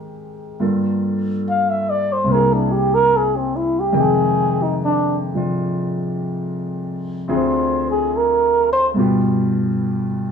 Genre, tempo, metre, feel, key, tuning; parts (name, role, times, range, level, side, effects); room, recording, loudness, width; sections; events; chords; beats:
jazz; 72 BPM; 4/4; swing 69% on 8ths; A4 = 444 Hz
warm grand piano; accompaniment; 0.0-10.3 s; C2 to G5; -19 LUFS; equal
breathy flugelhorn; melody; 1.5-8.9 s; C4 to F5; -17 LUFS; right 1 dB
moderate club reverb, RT60 0.6 s; small room ambience; -16 LUFS; side -6 dB against mid
0.0-10.3 A section
flugelhorn solo 0.0-10.3
0.0 Abmaj7; 0.6 Gm9; 2.3 C7b13; 4.0 Fm7; 7.3 Dm7b5; 9.0 G7
| 0.61 1.44 2.28 3.12 | 3.95 4.79 5.63 6.46 | 7.30 8.14 8.98 9.82